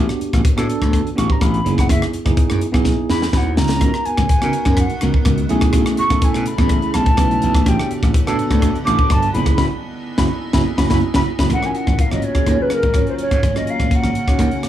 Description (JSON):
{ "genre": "electric jazz fusion", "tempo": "125 BPM", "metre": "4/4", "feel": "straight", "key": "unclear", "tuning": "A4 = 440 Hz", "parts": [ { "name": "tine electric piano", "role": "accompaniment", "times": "0.0-14.7 s", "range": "A3 to C#5", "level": "-22 LUFS", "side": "right 2 dB", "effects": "medium stereo tremolo" }, { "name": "slap bass", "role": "bass", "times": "0.0-14.7 s", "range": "F#1 to C#3", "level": "-20 LUFS", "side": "equal", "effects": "none" }, { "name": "crisp fusion drum kit", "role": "drums", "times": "0.1-14.7 s", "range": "hi-hat, kick drum, rim click, snare drum", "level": "-18 LUFS", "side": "equal", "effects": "none" }, { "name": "mellow hollow jazz flute", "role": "melody", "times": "1.2-14.7 s", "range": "A#4 to D6", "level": "-22 LUFS", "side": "equal", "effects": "slapback echo" }, { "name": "icy glass pad", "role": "sustained chords", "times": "4.3-14.7 s", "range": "C#3 to F#5", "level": "-27 LUFS", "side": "left 1 dB", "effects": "chorus, built-in reverb" } ], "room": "light reverb", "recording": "small room ambience", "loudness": "-14 LUFS", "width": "side -11 dB against mid", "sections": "0.0-11.5 A section; 11.5-14.7 B section", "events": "flute solo 0.0-11.5; drum fill 2.9-3.8, 11.0-11.5; band accent 9.6-11.5", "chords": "0.0 A13sus4; 1.7 F#13sus4; 3.8 C#13sus4; 5.5 B13sus4; 7.7 A13sus4; 9.3 F#13sus4; 11.5 G#13sus4", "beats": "0.45 0.93 1.41 | 1.90 2.38 2.86 3.34 | 3.82 4.30 4.78 5.26 | 5.74 6.22 6.70 7.18 | 7.66 8.14 8.62 9.10 | 9.58 10.06 10.54 11.02 | 11.50 11.98 12.46 12.95 | 13.43 13.91 14.39" }